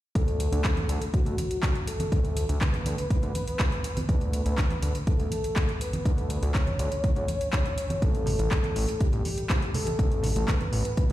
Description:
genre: progressive house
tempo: 122 BPM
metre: 4/4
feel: straight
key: D major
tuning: A4 = 440 Hz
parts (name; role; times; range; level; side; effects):
- soft octave-layered synth lead; melody; 0.1-11.1 s; F#4 to C#5; -33 LUFS; left 1 dB; chorus, tremolo, sidechain pumping, ping-pong delay
- fat analog bass; bass; 0.2-11.1 s; A1 to D2; -28 LUFS; equal; tube saturation, sidechain pumping
- deep house drum kit; drums; 0.2-11.1 s; handclaps, hi-hat; -34 LUFS; equal; overdrive
- electronic kick drum; drums; 0.2-11.1 s; none; -26 LUFS; equal; overdrive
- congas; percussion; 0.8-11.1 s; none; -33 LUFS; right 1 dB; sidechain pumping on perc
room: little or no reverb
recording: played on a big sound system in a bare room, large studio reverb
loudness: -24 LUFS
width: side -14 dB against mid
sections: 0.2-11.1 A section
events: none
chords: 0.2 D6; 8.0 A7(no3)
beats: | 0.15 0.65 1.14 1.63 | 2.12 2.61 3.10 3.60 | 4.09 4.58 5.07 5.56 | 6.06 6.55 7.04 7.53 | 8.02 8.52 9.01 9.50 | 9.99 10.48 10.97

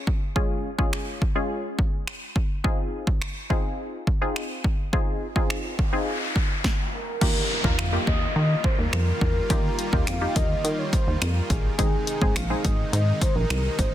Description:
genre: dance-pop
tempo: 105 BPM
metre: 4/4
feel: straight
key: Eb mixolydian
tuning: A4 = 440 Hz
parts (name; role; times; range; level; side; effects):
- wavetable chord stab; accompaniment; 0.0-13.4 s; Ab3 to Bb4; -30 LUFS; left 1 dB; sidechain pumping
- punchy analog drum machine; drums; 0.1-13.9 s; crash cymbal, finger snaps, hi-hat, kick drum, snare drum; -24 LUFS; equal; overdrive, soft clipping on snare
- noise sweep and downlifter; sound effects; 5.6-11.8 s; none; -31 LUFS; equal; none
- mellow horn-like synth lead; melody; 6.9-13.9 s; Ab4 to F5; -30 LUFS; equal; chorus, tape echo
- supersaw chords; sustained chords; 7.2-13.9 s; C3 to F4; -33 LUFS; right 1 dB; sidechain pumping
- plucky analog bass; bass; 7.2-13.9 s; Ab1 to Eb3; -25 LUFS; equal; sidechain pumping
room: little or no reverb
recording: dense, heavily limited modern master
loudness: -22 LUFS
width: side -12 dB against mid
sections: 0.0-7.2 A section; 7.2-13.9 B section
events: noise sweep 5.6-7.2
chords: 0.0 Db; 2.6 Fm7; 7.2 Ebadd9; 11.8 Ab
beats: | 0.36 0.93 1.50 2.07 | 2.64 3.22 3.79 4.36 | 4.93 5.50 6.07 6.64 | 7.22 7.79 8.36 8.93 | 9.50 10.07 10.64 11.22 | 11.79 12.36 12.93 13.50

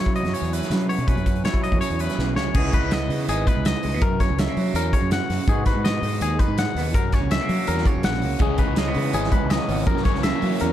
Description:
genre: math rock and midwest emo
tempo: 164 BPM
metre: 4/4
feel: straight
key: unclear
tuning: A4 = 440 Hz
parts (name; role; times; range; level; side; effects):
- electric guitar through a small old amp; accompaniment; 0.0-10.7 s; E2 to F#4; -28 LUFS; right 8 dB; plate reverb
- twangy electric guitar; arpeggios; 0.0-10.7 s; G#4 to F#5; -28 LUFS; left 6 dB; spring reverb, plate reverb
- fuzz fingered electric bass; bass; 0.0-10.7 s; G#1 to F#3; -25 LUFS; equal; overdrive
- modern studio drum kit; drums; 0.1-10.7 s; crash cymbal, hi-hat, kick drum, snare drum; -23 LUFS; equal; none
- crunchy overdriven guitar; riff; 8.4-10.7 s; F#2 to C#4; -26 LUFS; equal; phaser
room: light reverb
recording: dark, warm production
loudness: -19 LUFS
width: side -11 dB against mid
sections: 0.0-2.6 A section; 2.6-10.7 B section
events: drum fill 2.2-2.6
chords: 0.0 F#7sus4; 2.6 C#m9; 4.0 F#7; 5.5 G#m7; 6.9 F#7; 8.4 C#m9; 9.9 F#7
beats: 0.35 0.72 | 1.09 1.46 1.82 2.19 | 2.56 2.92 3.29 3.66 | 4.02 4.39 4.75 5.12 | 5.48 5.85 6.21 6.58 | 6.95 7.31 7.68 8.04 | 8.41 8.78 9.14 9.51 | 9.88 10.24 10.61

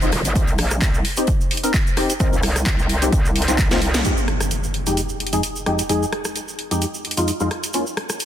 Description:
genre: bass house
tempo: 130 BPM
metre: 4/4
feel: swing 55% on 16ths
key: F minor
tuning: A4 = 440 Hz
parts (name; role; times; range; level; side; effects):
- percussive organ stab; stabs; 0.0-7.8 s; F2 to Bb4; -23 LUFS; left 1 dB; ensemble chorus, sidechain pumping, tape echo
- metallic wobble bass; bass; 0.0-4.0 s; Eb1 to Db2; -21 LUFS; equal; chorus, overdrive, sidechain pumping
- natural country drum kit; drums; 0.0-4.0 s; hi-hat, snare drum; -35 LUFS; left 4 dB; none
- tube shaker; percussion; 0.0-8.2 s; none; -30 LUFS; right 4 dB; none
- house drum kit; drums; 0.1-8.2 s; handclaps, hi-hat, rim click, snare drum; -24 LUFS; equal; none
- electronic kick drum; drums; 0.4-3.7 s; none; -20 LUFS; equal; overdrive
- impact; sound effects; 4.0-5.9 s; none; -25 LUFS; equal; none
room: light reverb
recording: dense, heavily limited modern master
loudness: -18 LUFS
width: side -10 dB against mid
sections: 0.0-4.0 A section; 4.0-8.2 B section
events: drum fill 3.7-4.0; band accent 3.9; impact 4.0-5.9; filter sweep on synth stab 4.0-8.2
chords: 0.4 Cm; 4.0 Fm7; 7.7 Bbm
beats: | 0.36 0.82 1.28 1.74 | 2.20 2.66 3.12 3.59 | 4.05 4.51 4.97 5.43 | 5.89 6.36 6.82 7.28 | 7.74 8.20

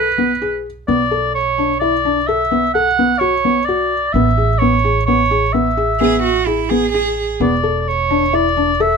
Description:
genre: contemporary instrumental, chamber music in an uneven meter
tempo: 129 BPM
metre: 7/4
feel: straight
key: B dorian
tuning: A4 = 438 Hz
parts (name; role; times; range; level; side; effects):
- warm oboe; melody; 0.0-9.0 s; B4 to F#5; -16 LUFS; right 2 dB; none
- felt-muted upright piano; arpeggios; 0.0-8.9 s; B3 to A4; -18 LUFS; left 4 dB; none
- upright bass; bass; 0.0-9.0 s; E1 to B1; -22 LUFS; right 2 dB; none
- warm cello; second line; 6.0-7.3 s; E4 to G#4; -18 LUFS; right 7 dB; none
room: little or no reverb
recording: close, detailed microphones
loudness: -14 LUFS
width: side -5 dB against mid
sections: 0.9-9.0 A section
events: none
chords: 0.0 N.C.; 0.9 Bm9; 4.1 Amaj9; 7.4 E7sus4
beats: 0.42 | 0.89 1.35 1.82 2.28 2.75 3.21 3.68 | 4.14 4.61 5.08 5.54 6.01 6.47 6.94 | 7.40 7.87 8.33 8.80

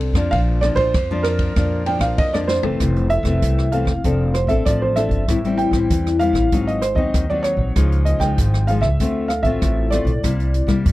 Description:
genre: samba and choro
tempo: 97 BPM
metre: 4/4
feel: straight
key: F major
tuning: A4 = 440 Hz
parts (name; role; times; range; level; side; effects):
- nylon-string guitar; accompaniment; 0.0-10.9 s; F2 to A4; -22 LUFS; left 4 dB; none
- upright bass; bass; 0.0-10.9 s; F1 to G2; -20 LUFS; equal; none
- open jazz drum kit; drums; 0.0-10.9 s; hi-hat, kick drum, ride cymbal, rim click, snare drum, toms; -23 LUFS; equal; none
- felt-muted upright piano; melody; 0.3-10.9 s; Bb4 to G5; -23 LUFS; right 3 dB; none
room: little or no reverb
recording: dry, close 1970s-style studio recording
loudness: -16 LUFS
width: side -17 dB against mid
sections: 0.0-2.8 A section; 2.8-10.9 B section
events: drum fill 2.5-2.8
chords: 0.3 Bb; 2.8 Fmaj7; 4.0 Dm7/F; 5.3 Am7; 6.5 Ab7; 7.8 Dbadd9; 9.0 Dm7; 10.2 C7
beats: | 0.33 0.95 1.57 2.19 | 2.81 3.42 4.04 4.66 | 5.28 5.90 6.52 7.14 | 7.76 8.38 9.00 9.62 | 10.24 10.86

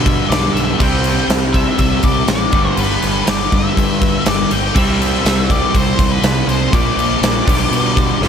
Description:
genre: classic rock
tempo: 121 BPM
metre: 4/4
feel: straight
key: unclear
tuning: A4 = 440 Hz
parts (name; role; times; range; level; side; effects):
- octave-fuzz lead guitar; melody; 0.0-8.2 s; B4 to G5; -21 LUFS; left 4 dB; distortion, digital delay
- overdriven electric guitar; riff; 0.0-8.3 s; F2 to C4; -18 LUFS; right 1 dB; slapback echo
- fuzz fingered electric bass; bass; 0.0-8.3 s; F1 to B2; -20 LUFS; equal; overdrive
- huge arena drum kit; drums; 0.1-8.3 s; crash cymbal, kick drum, snare drum; -16 LUFS; equal; none
room: moderate lush hall reverb, RT60 2.6 s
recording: big arena sound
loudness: -12 LUFS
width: side -7 dB against mid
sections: 0.0-8.3 A section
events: none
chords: 0.0 G6; 0.8 C5; 2.5 G6; 4.8 C; 6.7 Bb; 7.5 G/B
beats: 0.30 | 0.80 1.29 1.79 2.28 | 2.78 3.27 3.77 4.26 | 4.76 5.25 5.75 6.24 | 6.73 7.23 7.72 8.22

